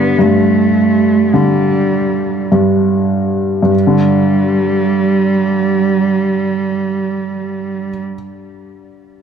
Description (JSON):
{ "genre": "pop", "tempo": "48-54 BPM", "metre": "4/4", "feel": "straight", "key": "unclear", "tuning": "A4 = 435 Hz", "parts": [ { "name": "warm cello", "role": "melody", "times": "0.0-8.0 s", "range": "G3 to B3", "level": "-14 LUFS", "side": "right 4 dB", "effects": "none" }, { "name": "clear upright piano", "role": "accompaniment", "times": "0.0-9.2 s", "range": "G2 to D3", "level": "-14 LUFS", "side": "left 1 dB", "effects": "none" } ], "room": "moderate scoring stage reverb, RT60 1.9 s", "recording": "dark, warm production", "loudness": "-11 LUFS", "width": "side -7 dB against mid", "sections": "0.0-3.7 A section; 3.7-8.8 B section", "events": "slowing down 0.0-3.7", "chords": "0.0 G5" }